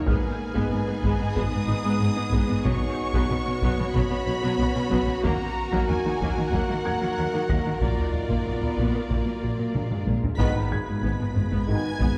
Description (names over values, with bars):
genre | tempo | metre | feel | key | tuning
cinematic, hybrid orchestral and electronic film score | 93 BPM | 4/4 | straight | unclear | A4 = 439 Hz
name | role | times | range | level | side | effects
clear symphonic violin section | melody | 0.0-12.2 s | D5 to Cb7 | -37 LUFS | equal | none
bright studio violin section | second line | 0.0-12.2 s | F4 to Cb6 | -38 LUFS | equal | none
metallic inharmonic drone | sustained chords | 0.0-12.2 s | Gb3 to F#5 | -38 LUFS | equal | none
warm French horn section | sustained chords | 0.0-11.9 s | Cb4 to Bb4 | -34 LUFS | equal | none
felt-muted upright piano | texture | 0.0-2.7, 6.9-12.2 s | F6 to Bb6 | -44 LUFS | equal | digital delay
rich symphonic viola section | accompaniment | 0.1-12.2 s | Eb3 to Cb5 | -34 LUFS | equal | none
glassy wavetable pluck | arpeggios | 0.1-12.1 s | Eb3 to C#5 | -37 LUFS | equal | none
rich symphonic cello section | bass | 0.1-12.1 s | Ab2 to Eb3 | -32 LUFS | equal | none
rich symphonic double bass section | bass | 0.1-12.1 s | Ab1 to Eb2 | -32 LUFS | equal | none
taiko ensemble | drums | 0.1-12.2 s | none | -31 LUFS | equal | none
bright trombone section | sustained chords | 10.4-11.9 s | Cb3 to Eb3 | -38 LUFS | equal | none
room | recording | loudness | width
moderate scoring stage reverb, RT60 1.9 s | dark, warm production | -25 LUFS | mono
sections
0.0-10.4 A section; 10.4-12.2 B section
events
drum fill 9.7-10.4; band accent 10.4-11.0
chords
0.1 Abm; 2.7 Bsus2; 5.2 Ebm; 7.8 Bb; 10.4 Abm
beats
| 0.07 0.72 1.36 2.01 | 2.65 3.30 3.94 4.59 | 5.23 5.88 6.52 7.17 | 7.81 8.46 9.10 9.75 | 10.39 11.04 11.68